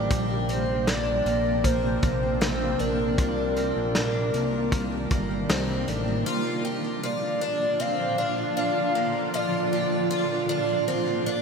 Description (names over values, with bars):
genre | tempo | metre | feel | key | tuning
dream pop | 78 BPM | 4/4 | straight | Bb major | A4 = 440 Hz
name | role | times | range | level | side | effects
shimmering ambient pad | sustained chords | 0.0-11.4 s | Bb2 to F4 | -28 LUFS | right 1 dB | chorus, built-in reverb, shimmer reverb
picked twelve-string acoustic guitar | arpeggios | 0.0-11.4 s | Bb3 to G4 | -30 LUFS | equal | lush chorus, shimmer reverb, ping-pong delay
fat analog bass | bass | 0.0-6.2 s | G1 to C2 | -30 LUFS | equal | none
hammered dulcimer | texture | 0.0-6.6 s | F4 to G4 | -41 LUFS | left 1 dB | shimmer reverb, ping-pong delay
loose indie drum kit | drums | 0.1-6.1 s | hi-hat, kick drum, snare drum | -27 LUFS | equal | gated reverb
warbly nostalgic lead | melody | 0.5-10.9 s | Bb4 to F5 | -29 LUFS | left 1 dB | chorus, shimmer reverb, ping-pong delay
room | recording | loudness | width
wet lush hall reverb, RT60 3.1 s | bright 1980s-style digital production | -23 LUFS | side -5 dB against mid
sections
0.0-6.3 A section; 6.3-11.4 B section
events
none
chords
0.1 Bbadd9; 3.2 Cm9; 6.3 Bb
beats
| 0.11 0.88 1.65 2.42 | 3.19 3.96 4.72 5.49 | 6.26 7.03 7.80 8.57 | 9.34 10.11 10.88